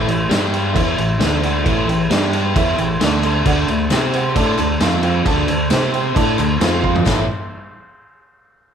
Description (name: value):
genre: classic rock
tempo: 133 BPM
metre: 4/4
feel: straight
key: unclear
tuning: A4 = 440 Hz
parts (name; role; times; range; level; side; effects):
- warm grand piano; accompaniment; 0.0-7.3 s; C4 to C6; -24 LUFS; right 5 dB; none
- biting overdriven guitar; riff; 0.0-7.2 s; A2 to C5; -22 LUFS; left 7 dB; none
- overdriven semi-hollow guitar; riff; 0.0-7.2 s; A2 to C5; -23 LUFS; right 7 dB; none
- growling fingered electric bass; bass; 0.0-7.3 s; A1 to C3; -22 LUFS; equal; overdrive
- vintage drum kit; drums; 0.1-7.2 s; crash cymbal, kick drum, ride cymbal, snare drum, toms; -19 LUFS; equal; none
- group handclap; percussion; 3.9-7.3 s; none; -34 LUFS; left 7 dB; none
room: moderate large studio reverb, RT60 1.3 s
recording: band playing live in one room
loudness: -14 LUFS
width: side -8 dB against mid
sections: 0.0-7.1 A section; 7.1-8.7 B section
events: drum fill 6.8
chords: 0.3 G5; 0.8 A; 1.2 D5; 1.7 A; 2.1 G5; 2.6 A; 3.0 D5; 3.9 C5; 4.4 D5; 4.8 F5; 5.3 D5; 5.7 C5; 6.2 D5; 6.6 F5; 7.1 A